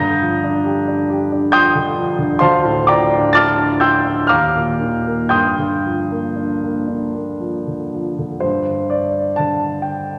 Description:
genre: classical, impressionist solo piano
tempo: 56-68 BPM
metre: 3/4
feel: rubato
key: G minor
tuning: A4 = 441 Hz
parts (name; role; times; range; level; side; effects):
- warm concert grand piano; solo; 0.0-10.2 s; D2 to Bb6; -17 LUFS; equal; none
room: wet concert hall reverb, RT60 2.1 s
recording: none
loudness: -17 LUFS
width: mono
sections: 0.0-8.4 A section; 8.4-10.2 B section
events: none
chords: 0.0 Gm7; 2.4 Dm9; 4.3 Eb5; 5.3 Gm7; 8.4 G5

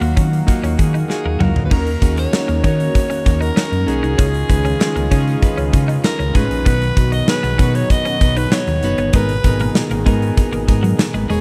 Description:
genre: 1980s-style pop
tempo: 97 BPM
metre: 4/4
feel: straight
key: unclear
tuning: A4 = 440 Hz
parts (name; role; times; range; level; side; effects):
- raspy alto saxophone; melody; 0.0-11.4 s; F#4 to D#5; -25 LUFS; equal; tape echo
- soft electric-piano-like synth keys; accompaniment; 0.0-11.4 s; G#2 to C#5; -25 LUFS; equal; chorus
- lush unison pad; sustained chords; 0.0-11.4 s; A#2 to E#5; -28 LUFS; equal; chorus, phaser
- twelve-string electric guitar; riff; 0.0-11.4 s; F#3 to D#4; -27 LUFS; equal; subtle chorus
- hollow-body short-scale fingered electric bass; bass; 0.0-11.4 s; E1 to D#3; -21 LUFS; equal; none
- gated 80s drum kit; drums; 0.0-11.4 s; crash cymbal, hi-hat, kick drum, snare drum, toms; -20 LUFS; equal; none
- tambourine; percussion; 1.7-11.4 s; none; -43 LUFS; equal; none
room: little or no reverb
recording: none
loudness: -16 LUFS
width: mono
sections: 0.0-1.7 A section; 1.7-11.4 B section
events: drum fill 1.1-1.7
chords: 0.0 D#madd9; 1.7 D#m7; 4.2 C#add9; 6.7 B; 9.1 G#madd9

